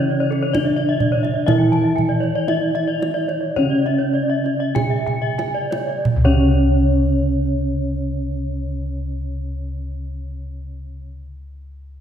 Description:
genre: Balinese gamelan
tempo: 44-69 BPM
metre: 4/4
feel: straight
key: unclear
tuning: A4 = 440 Hz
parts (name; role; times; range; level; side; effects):
- gamelan-type bronze metallophone; melody; 0.0-11.1 s; C#4 to G#4-30c; -22 LUFS; equal; none
- gamelan-type bronze metallophone; accompaniment; 0.0-11.1 s; C#3 to E3-30c; -26 LUFS; right 1 dB; none
- gamelan-type bronze metallophone; arpeggios; 0.0-11.1 s; A4-20c to G#5-30c; -27 LUFS; right 3 dB; none
- gamelan-type bossed gongs; bass; 0.0-11.0 s; C#2 to E4-30c; -23 LUFS; left 1 dB; none
- gamelan-type bronze metallophone; arpeggios; 0.2-11.1 s; C#5 to A5-20c; -26 LUFS; left 5 dB; none
- kendang; percussion; 0.3-6.7 s; none; -23 LUFS; right 3 dB; none
room: wet concert hall reverb, RT60 2.2 s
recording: recorded in a church or concert hall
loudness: -17 LUFS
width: side -9 dB against mid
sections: 0.0-6.1 A section; 6.1-11.5 B section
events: slowing down 0.0-6.1; drum fill 5.1-6.1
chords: none

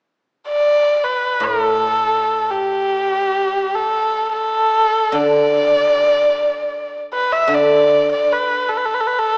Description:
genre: chinese traditional, Chinese chamber ensemble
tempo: free time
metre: none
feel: none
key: D zhi mode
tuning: A4 = 440 Hz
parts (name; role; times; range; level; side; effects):
- warm erhu; melody; 0.5-9.4 s; G4 to E5; -14 LUFS; equal; none
- guzheng; accompaniment; 1.4-9.4 s; A2 to D3; -21 LUFS; equal; none
room: wet scoring stage reverb, RT60 1.7 s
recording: recorded in a church or concert hall, small speaker sound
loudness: -14 LUFS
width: side -32 dB against mid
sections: 0.0-7.5 A section; 7.5-9.4 B section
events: none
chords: none

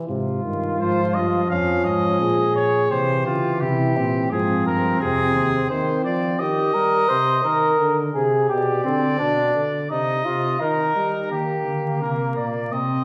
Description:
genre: classical, imitative canzona for brass ensemble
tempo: 85 BPM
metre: 4/4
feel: straight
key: F minor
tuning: A4 = 440 Hz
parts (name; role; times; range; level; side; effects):
- warm trombone; accompaniment; 0.0-11.3 s; B2 to G3; -27 LUFS; equal; none
- mellow flugelhorn; second line; 0.1-13.0 s; Bb3 to C5; -25 LUFS; equal; none
- dark tuba; bass; 0.1-5.7, 11.3-13.0 s; Eb2 to Eb3; -28 LUFS; equal; none
- clear trumpet; melody; 0.8-13.0 s; F4 to F5; -26 LUFS; equal; none
room: wet recital hall reverb, RT60 1.4 s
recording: recorded in a church or concert hall, vinyl crackle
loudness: -21 LUFS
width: mono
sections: 0.1-11.3 A section; 11.3-13.0 B section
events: none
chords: 0.1 Fm; 1.5 Bbm/F; 2.9 C; 4.3 Fm; 5.7 Cm/Eb; 7.1 Cm9; 8.5 G/B; 9.9 Cm; 11.3 Eb

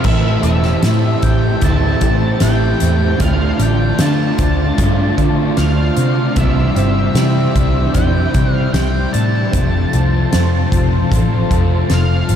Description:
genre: rock, shoegaze and dream pop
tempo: 76 BPM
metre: 4/4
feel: straight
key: A minor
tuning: A4 = 440 Hz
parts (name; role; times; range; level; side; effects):
- octave-fuzz lead guitar; melody; 0.0-12.4 s; E5 to A5; -25 LUFS; equal; distortion, analog delay
- analog string pad; sustained chords; 0.0-12.4 s; E4 to A5; -24 LUFS; equal; ensemble chorus
- fingerpicked plugged-in twelve-string acoustic guitar; arpeggios; 0.0-12.4 s; E3 to G4; -27 LUFS; right 8 dB; none
- overdriven semi-hollow guitar; riff; 0.0-12.4 s; A2 to F4; -21 LUFS; right 7 dB; reverse reverb
- thick fuzz guitar; riff; 0.0-12.4 s; F2 to D4; -20 LUFS; left 7 dB; distortion, wide subtle chorus
- vintage muted picked electric bass; bass; 0.0-12.4 s; E1 to D3; -16 LUFS; equal; none
- loose indie drum kit; drums; 0.0-12.4 s; crash cymbal, hi-hat, kick drum, snare drum; -19 LUFS; equal; none
room: moderate huge ambient reverb, RT60 8.2 s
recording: dreamy mix soaked in reverb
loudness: -12 LUFS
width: side -9 dB against mid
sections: 0.0-12.4 A section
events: none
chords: 0.0 Am7; 3.2 Dm7; 6.4 Cadd9; 9.5 F

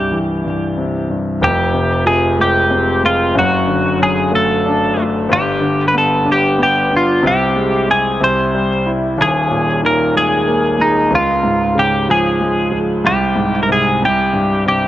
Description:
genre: pop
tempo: 62 BPM (dotted quarters)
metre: 6/8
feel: straight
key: F minor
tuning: A4 = 440 Hz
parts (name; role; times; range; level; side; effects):
- twelve-string electric guitar; melody; 0.0-14.9 s; Eb4 to C5; -15 LUFS; equal; none
- clear concert grand piano; accompaniment; 0.0-14.9 s; Eb1 to E4; -16 LUFS; equal; none
room: moderate plate reverb, RT60 3.2 s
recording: worn, warbling old tape, cassette tape, warbly pitch drift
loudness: -12 LUFS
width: side -13 dB against mid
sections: 0.0-1.4 A section; 1.4-14.9 B section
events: none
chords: 0.0 C; 1.4 Fmadd9; 3.4 D/F#; 5.3 G; 7.2 Abmaj7/C; 8.2 C; 9.2 Ebsus4; 11.1 Db; 13.0 Abmaj7/C; 14.0 C5

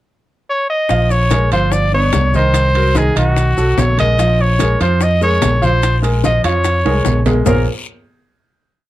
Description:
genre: Afro-Cuban jazz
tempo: 146 BPM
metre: 4/4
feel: straight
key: Bb minor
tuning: A4 = 442 Hz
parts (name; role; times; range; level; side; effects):
- clear trumpet; melody; 0.5-7.7 s; Gb4 to D#5; -16 LUFS; equal; none
- clear grand piano; accompaniment; 0.9-7.7 s; Eb3 to F5; -19 LUFS; right 1 dB; none
- fingered electric bass; bass; 0.9-7.7 s; G1 to F2; -15 LUFS; equal; none
- bongos; percussion; 0.9-7.6 s; none; -24 LUFS; left 8 dB; none
- congas; percussion; 0.9-7.6 s; none; -22 LUFS; left 2 dB; none
- guiro; percussion; 0.9-7.6 s; none; -33 LUFS; left 5 dB; none
- maracas; percussion; 0.9-7.6 s; none; -32 LUFS; left 8 dB; none
- timbales; percussion; 0.9-7.6 s; none; -24 LUFS; right 4 dB; none
room: moderate club reverb, RT60 0.6 s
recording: dark, warm production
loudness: -12 LUFS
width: side -15 dB against mid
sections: 0.0-0.9 pickup bar; 0.9-7.5 A section; 7.5-8.9 final chord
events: drum fill 6.9-7.5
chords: 0.0 N.C.; 0.9 Bbm7; 1.7 G7b13; 2.5 Cm7b5; 3.4 B7; 4.2 Bbm7; 7.5 Bbm9

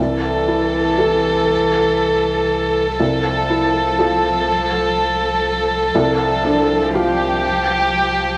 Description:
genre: neoclassical piano and strings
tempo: 121 BPM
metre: 3/4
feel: rubato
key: C major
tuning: A4 = 440 Hz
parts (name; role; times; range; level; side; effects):
- warm chamber violin section; melody; 0.0-8.4 s; G4 to A4; -20 LUFS; equal; none
- warm cello; second line; 0.0-8.4 s; E3 to F3; -26 LUFS; equal; none
- felt-muted upright piano; accompaniment; 0.0-8.4 s; C2 to A4; -23 LUFS; equal; none
- pure sine sub bass; bass; 0.0-8.4 s; C2; -32 LUFS; equal; none
room: moderate studio reverb, RT60 0.6 s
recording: none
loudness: -17 LUFS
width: mono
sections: 0.0-8.4 A section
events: none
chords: 0.0 C6; 3.0 Fmaj7/C; 5.9 G7sus4/C

